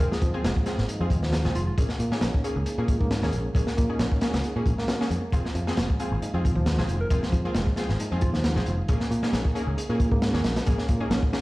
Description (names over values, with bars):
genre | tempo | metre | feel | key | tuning
breakbeat, breaks | 135 BPM | 4/4 | swing 54% on 16ths | Bb minor | A4 = 440 Hz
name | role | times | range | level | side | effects
soft struck synth lead | melody | 0.0-1.7, 7.0-8.4 s | F4 to Bb4 | -36 LUFS | equal | chorus, AM radio sound, tape echo
reed electric piano | riff | 0.0-11.4 s | Eb3 to Ab4 | -31 LUFS | equal | fast tremolo, tape echo
orchestra-hit-like synth stab | stabs | 0.0-11.4 s | Bb3 to Ab4 | -32 LUFS | equal | built-in reverb, tape echo
picked electric bass | bass | 0.0-11.2 s | F1 to Bb2 | -27 LUFS | equal | tube saturation
crunchy breakbeat drum kit | drums | 0.1-11.4 s | hi-hat, kick drum, snare drum | -26 LUFS | equal | none
room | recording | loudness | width
light reverb | played on a big sound system in a bare room, stone room reverb, vinyl crackle | -23 LUFS | side -20 dB against mid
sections
0.0-11.4 A section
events
none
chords
0.0 Fm; 1.8 Bbm7; 5.3 Fm; 8.9 Bbm7